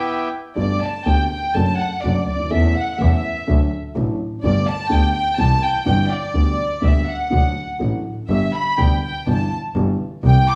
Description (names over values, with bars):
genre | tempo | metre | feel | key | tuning
tango | 124 BPM | 4/4 | rubato | G major | A4 = 439 Hz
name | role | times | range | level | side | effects
dark studio violin section | second line | 0.0-10.6 s | D5 to D6 | -25 LUFS | equal | none
dark upright piano | accompaniment | 0.6-10.4 s | G1 to A4 | -27 LUFS | equal | none
rich double bass | bass | 0.6-10.4 s | F#1 to E2 | -21 LUFS | equal | none
room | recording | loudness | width
wet large studio reverb, RT60 1.1 s | band playing live in one room, small room ambience | -19 LUFS | mono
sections
0.6-10.6 A section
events
violin section solo 0.6-10.6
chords
0.0 Em; 0.6 Gadd9; 1.5 D/F#; 2.5 A/E; 3.5 D; 4.4 Gadd9; 5.4 C; 6.4 G/D; 7.3 D; 8.3 G; 9.3 Em/G